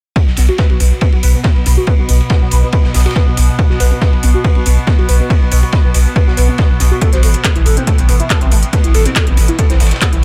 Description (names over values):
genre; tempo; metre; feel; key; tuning
driving peak-time techno; 140 BPM; 4/4; straight; unclear; A4 = 439 Hz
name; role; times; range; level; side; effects
overdriven synth lead; riff; 0.2-10.2 s; A3 to B4; -24 LUFS; equal; phaser, subtle chorus, sidechain pumping, analog delay
overtone-sweeping drone; drone; 0.9-10.2 s; B2 to B3; -25 LUFS; equal; chorus, built-in reverb, sidechain pumping
electronic kick drum; drums; 0.2-10.1 s; none; -15 LUFS; equal; none
raw garage drum kit; drums; 0.2-10.1 s; ride cymbal, snare drum; -28 LUFS; equal; sidechain pumping on cymbals, high-pass filter on cymbals, high-pass filter on snare, high-pass filter on room
saturated sub bass; bass; 0.3-10.2 s; A1 to B1; -14 LUFS; equal; overdrive, sidechain pumping, low-pass filter
techno drum kit; drums; 0.4-10.2 s; handclaps, hi-hat; -22 LUFS; equal; none
room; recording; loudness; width
studio reverb; echo-heavy mix; -12 LUFS; mono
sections
0.2-10.2 A section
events
filter sweep on analog synth lead 0.2-10.2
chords
0.2 B5; 7.0 Am